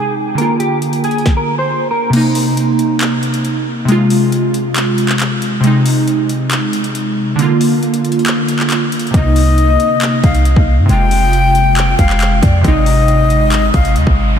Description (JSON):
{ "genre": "hip hop, trap", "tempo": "137 BPM", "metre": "4/4", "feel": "half-time", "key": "C minor", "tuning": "A4 = 441 Hz", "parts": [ { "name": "clean electric guitar", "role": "melody", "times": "0.0-2.1 s", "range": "G4 to C5", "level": "-19 LUFS", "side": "equal", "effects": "analog chorus, low-pass filter, ping-pong delay" }, { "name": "glassy digital keys", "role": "accompaniment", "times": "0.0-14.4 s", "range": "C3 to F4", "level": "-14 LUFS", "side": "right 1 dB", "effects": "chorus, low-pass filter" }, { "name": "trap drum kit", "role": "drums", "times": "0.4-14.2 s", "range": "crash cymbal, handclaps, hi-hat, kick drum, snare drum", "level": "-18 LUFS", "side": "equal", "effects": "overdrive" }, { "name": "breathy concert flute", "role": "second line", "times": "9.1-13.9 s", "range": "D5 to G5", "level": "-16 LUFS", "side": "left 4 dB", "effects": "ping-pong delay" }, { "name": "clean 808-style bass", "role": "bass", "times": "9.1-14.4 s", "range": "F1 to G2", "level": "-13 LUFS", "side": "equal", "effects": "none" }, { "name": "riser", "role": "sound effects", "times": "13.3-14.4 s", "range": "none", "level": "-29 LUFS", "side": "equal", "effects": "none" } ], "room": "moderate huge ambient reverb, RT60 5.4 s", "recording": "dreamy mix soaked in reverb", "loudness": "-11 LUFS", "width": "side -8 dB against mid", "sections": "0.0-2.1 A section; 2.1-14.4 B section", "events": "kick muted 2.1-9.1; riser 13.3-14.4", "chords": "0.4 Bb; 2.1 Cm7; 3.9 Fm; 5.6 Ab; 7.4 Bb; 9.1 Cm7; 10.9 Fm; 12.6 Ab" }